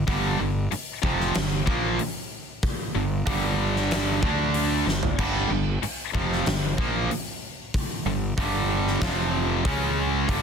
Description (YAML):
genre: hard rock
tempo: 94 BPM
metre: 4/4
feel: straight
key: G minor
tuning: A4 = 440 Hz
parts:
  - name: distorted electric guitar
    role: riff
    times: 0.0-10.4 s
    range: F2 to D4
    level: -27 LUFS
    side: right 12 dB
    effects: overdrive
  - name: tight distorted guitar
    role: riff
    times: 0.0-10.4 s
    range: F2 to D4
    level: -28 LUFS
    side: left 14 dB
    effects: distortion
  - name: fuzz fingered electric bass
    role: bass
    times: 0.0-10.4 s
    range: F1 to D2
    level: -28 LUFS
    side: left 1 dB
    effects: overdrive
  - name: huge arena drum kit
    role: drums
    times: 0.1-10.4 s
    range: crash cymbal, hi-hat, kick drum, snare drum, toms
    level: -28 LUFS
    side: equal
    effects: none
room: light reverb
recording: dense, heavily limited modern master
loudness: -22 LUFS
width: side -6 dB against mid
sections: 0.0-10.4 A section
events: drum fill 4.9-5.2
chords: 0.0 Gm; 4.2 D5; 4.9 Gm; 9.0 F5; 9.7 C#5